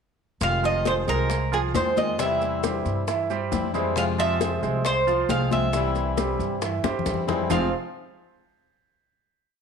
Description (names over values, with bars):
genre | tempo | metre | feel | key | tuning
latin, Cuban son and guajira | 136 BPM | 4/4 | straight | F harmonic minor | A4 = 441 Hz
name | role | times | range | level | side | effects
Cuban tres | melody | 0.4-7.7 s | Ab4 to F5 | -26 LUFS | right 2 dB | none
fingerpicked plugged-in swing-style acoustic guitar | accompaniment | 0.4-7.7 s | F2 to F4 | -29 LUFS | left 9 dB | none
upright bass | bass | 0.4-7.7 s | F1 to G2 | -29 LUFS | equal | none
bongos | percussion | 0.4-7.6 s | none | -33 LUFS | left 10 dB | none
congas | percussion | 0.4-7.6 s | none | -32 LUFS | left 10 dB | none
maracas | percussion | 0.4-7.6 s | none | -39 LUFS | right 12 dB | none
clear concert grand piano | arpeggios | 0.6-7.7 s | E3 to F5 | -28 LUFS | right 8 dB | none
room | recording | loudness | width
wet echo chamber reverb, RT60 1.2 s | 1960s-style stereo with parts hard left and right | -22 LUFS | side -6 dB against mid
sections
0.4-7.5 verse; 7.5-9.3 final chord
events
drum fill 6.8-7.5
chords
0.4 Fm7; 2.2 C/E; 4.0 Fm; 5.7 C; 7.5 Fm